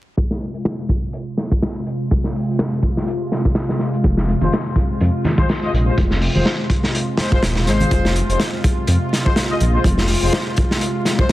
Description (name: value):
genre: breakbeat, breaks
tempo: 124 BPM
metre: 4/4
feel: swing 56% on 16ths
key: unclear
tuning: A4 = 441 Hz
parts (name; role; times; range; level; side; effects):
- lush unison pad; sustained chords; 0.2-11.3 s; C3 to F4; -23 LUFS; equal; chorus, sidechain pumping
- crunchy breakbeat drum kit; drums; 0.2-11.3 s; hi-hat, kick drum, snare drum; -19 LUFS; equal; none
- dark detuned saw bass; bass; 4.0-10.3 s; Eb1 to F2; -18 LUFS; equal; none
- congas; percussion; 4.2-7.9 s; none; -25 LUFS; left 1 dB; none
- warm brass ensemble; stabs; 4.4-11.3 s; Ab3 to Eb5; -25 LUFS; left 2 dB; ping-pong delay
room: light reverb, studio ambience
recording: dense, heavily limited modern master, vinyl crackle, low-pass filter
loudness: -16 LUFS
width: side -16 dB against mid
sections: 0.2-7.9 A section; 7.9-11.3 B section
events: filter sweep on analog synth pad 0.2-7.9; filter sweep 0.2-7.9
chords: 0.2 Fm